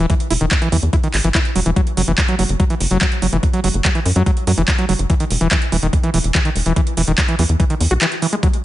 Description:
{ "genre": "psychedelic trance", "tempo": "144 BPM", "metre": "4/4", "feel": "straight", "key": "unclear", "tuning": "A4 = 440 Hz", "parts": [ { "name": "overdriven acid bass", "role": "riff", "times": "0.0-8.5 s", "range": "D#3 to F#4", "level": "-20 LUFS", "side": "equal", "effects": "distortion, auto-pan, sidechain pumping, dub echo" }, { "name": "tight sequencer bass", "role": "bass", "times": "0.0-8.0 s", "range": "E1 to F#2", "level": "-18 LUFS", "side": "equal", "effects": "none" }, { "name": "electronic kick drum", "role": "drums", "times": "0.1-8.5 s", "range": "none", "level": "-17 LUFS", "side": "equal", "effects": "overdrive, small room reverb" }, { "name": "garage drum kit", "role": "drums", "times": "0.1-8.6 s", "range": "handclaps, hi-hat", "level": "-21 LUFS", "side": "right 1 dB", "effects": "overdrive, small room reverb" } ], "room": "digital ambience", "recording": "nothing above 10.4 kHz", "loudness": "-14 LUFS", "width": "side -15 dB against mid", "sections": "0.0-8.6 A section", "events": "none", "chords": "0.0 N.C.; 5.1 E5" }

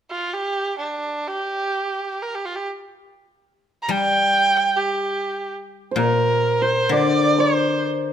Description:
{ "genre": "chinese traditional, Chinese chamber ensemble", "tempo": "free time", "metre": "none", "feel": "none", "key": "G yu mode", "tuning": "A4 = 444 Hz", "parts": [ { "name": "rich erhu", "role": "melody", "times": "0.1-7.9 s", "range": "D4 to Bb5", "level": "-21 LUFS", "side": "right 2 dB", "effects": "none" }, { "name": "guzheng", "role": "accompaniment", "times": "3.9-8.1 s", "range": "Bb2 to G3", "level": "-23 LUFS", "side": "left 5 dB", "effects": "none" }, { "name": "hammered dulcimer", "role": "second line", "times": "5.9-8.1 s", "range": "Bb4 to D5", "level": "-20 LUFS", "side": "right 2 dB", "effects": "none" } ], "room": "wet recital hall reverb, RT60 1.5 s", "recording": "none", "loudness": "-19 LUFS", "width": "side -9 dB against mid", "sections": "0.0-5.7 A section; 5.7-8.1 B section", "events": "none", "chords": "none" }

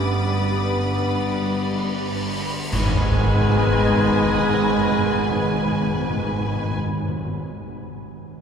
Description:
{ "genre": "cinematic, suspense film score", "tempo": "92 BPM", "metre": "5/4", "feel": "straight", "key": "G# minor", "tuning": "A4 = 439 Hz", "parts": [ { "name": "rich studio violin section", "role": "melody", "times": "0.0-6.8 s", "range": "G#5 to B5", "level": "-31 LUFS", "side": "left 1 dB", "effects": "none" }, { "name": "mellow clarinet", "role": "second line", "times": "0.0-6.7 s", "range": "G#3 to B3", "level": "-28 LUFS", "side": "left 1 dB", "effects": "none" }, { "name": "rich studio violin section", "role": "second line", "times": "0.0-6.7 s", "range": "B4", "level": "-30 LUFS", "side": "equal", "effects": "none" }, { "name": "rich studio viola section", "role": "accompaniment", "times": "0.0-6.7 s", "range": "D#3 to G3", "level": "-33 LUFS", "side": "equal", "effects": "none" }, { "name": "clear trombone section", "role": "sustained chords", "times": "0.0-6.7 s", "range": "G2 to B3", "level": "-30 LUFS", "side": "right 2 dB", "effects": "none" }, { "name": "dark French horn section", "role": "sustained chords", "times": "0.0-6.7 s", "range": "G3 to G#3", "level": "-30 LUFS", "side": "left 5 dB", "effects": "none" }, { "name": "clear studio double bass section", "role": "bass", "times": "0.0-6.7 s", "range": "G1 to G#1", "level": "-27 LUFS", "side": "right 2 dB", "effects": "none" }, { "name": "rich studio cello section", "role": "bass", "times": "0.0-6.7 s", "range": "G2 to G#2", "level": "-27 LUFS", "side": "right 1 dB", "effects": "none" }, { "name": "cymbal swell and sub drop", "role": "sound effects", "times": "1.6-7.3 s", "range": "none", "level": "-30 LUFS", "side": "left 1 dB", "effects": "none" }, { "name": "clear studio violin section", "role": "texture", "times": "0.0-5.6 s", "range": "D6 to A#6", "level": "-34 LUFS", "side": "left 4 dB", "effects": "none" }, { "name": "clear studio cello section", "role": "riff", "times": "0.1-2.6 s", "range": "G2 to G3", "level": "-34 LUFS", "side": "equal", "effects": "none" }, { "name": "clash cymbals and concert bass drum", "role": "percussion", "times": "2.7-4.0 s", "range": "none", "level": "-31 LUFS", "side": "equal", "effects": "none" }, { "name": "timpani", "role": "percussion", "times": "2.7-7.3 s", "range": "G#2", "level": "-28 LUFS", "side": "left 1 dB", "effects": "none" } ], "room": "wet cathedral reverb, RT60 5.6 s", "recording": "recorded in a church or concert hall", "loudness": "-19 LUFS", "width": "side -7 dB against mid", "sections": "0.0-2.7 A section; 2.7-6.0 B section", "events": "cymbal swell 1.6-2.7; band accent 2.7-3.4; impact 2.7-6.0", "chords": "0.0 G; 2.7 G#m" }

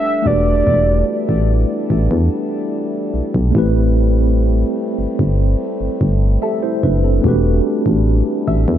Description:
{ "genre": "contemporary R&B", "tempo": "73 BPM", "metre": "4/4", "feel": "straight", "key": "E minor", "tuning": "A4 = 439 Hz", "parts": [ { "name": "mellow horn-like synth lead", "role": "melody", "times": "0.0-1.5 s", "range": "D5 to E5", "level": "-20 LUFS", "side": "right 1 dB", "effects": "chorus, ping-pong delay" }, { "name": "mellow tine electric piano", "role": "accompaniment", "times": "0.0-8.8 s", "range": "A3 to E5", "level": "-20 LUFS", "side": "right 1 dB", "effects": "medium stereo tremolo" }, { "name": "dark French horn section", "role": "sustained chords", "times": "0.0-8.8 s", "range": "E3 to A4", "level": "-24 LUFS", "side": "left 2 dB", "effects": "none" }, { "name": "impact", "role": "sound effects", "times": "0.0-0.7 s", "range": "none", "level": "-53 LUFS", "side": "equal", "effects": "none" }, { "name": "soft round pluck", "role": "texture", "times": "0.0-0.5, 6.4-8.8 s", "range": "A4 to E5", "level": "-28 LUFS", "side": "left 2 dB", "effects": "lush chorus, ping-pong delay" }, { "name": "solid FM bass", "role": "bass", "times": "0.3-8.8 s", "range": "E1 to E2", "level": "-15 LUFS", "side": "equal", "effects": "none" } ], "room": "light reverb", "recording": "dark, warm production", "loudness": "-14 LUFS", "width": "side -11 dB against mid", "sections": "0.0-8.8 A section", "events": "impact 0.0-0.7", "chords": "0.3 Em11; 3.5 Am7; 7.2 Em11" }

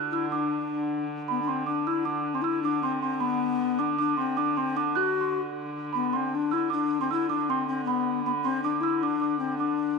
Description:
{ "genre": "medieval dance", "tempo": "103 BPM (dotted quarters)", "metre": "6/8", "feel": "straight", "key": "D mixolydian", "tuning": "A4 = 444 Hz", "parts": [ { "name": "celesta", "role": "second line", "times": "0.0-10.0 s", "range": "B5 to F#6", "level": "-30 LUFS", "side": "right 10 dB", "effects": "none" }, { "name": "dark hurdy-gurdy", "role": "drone", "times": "0.0-10.0 s", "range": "D3", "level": "-34 LUFS", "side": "right 1 dB", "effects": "stereo widening" }, { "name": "mellow hollow bass recorder", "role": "melody", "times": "0.1-10.0 s", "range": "B3 to F#4", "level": "-27 LUFS", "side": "left 8 dB", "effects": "none" } ], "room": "wet echo chamber reverb, RT60 1.3 s, studio ambience", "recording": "1960s-style stereo with parts hard left and right", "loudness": "-25 LUFS", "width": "side -4 dB against mid", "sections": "0.0-1.5 A section; 1.5-10.0 B section", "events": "none", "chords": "none" }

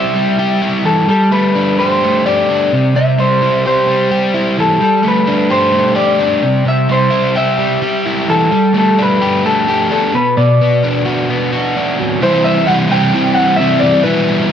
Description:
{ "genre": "rock", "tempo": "129 BPM", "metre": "4/4", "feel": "straight", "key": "unclear", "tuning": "A4 = 439 Hz", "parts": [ { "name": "electric guitar through a small old amp", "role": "melody", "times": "0.0-14.5 s", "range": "A4 to G5", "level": "-14 LUFS", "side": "left 1 dB", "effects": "slapback echo" }, { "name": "overdriven semi-hollow guitar", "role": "riff", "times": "0.0-14.5 s", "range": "B2 to G4", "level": "-13 LUFS", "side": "right 1 dB", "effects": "none" } ], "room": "light reverb", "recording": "dark, warm production", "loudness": "-11 LUFS", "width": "side -8 dB against mid", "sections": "0.0-12.2 A section; 12.2-14.5 B section", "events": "none", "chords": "0.0 C; 1.1 Gsus2; 2.7 C; 4.8 Gsus2; 6.4 C; 8.5 Gsus2; 10.1 Bm; 12.2 C" }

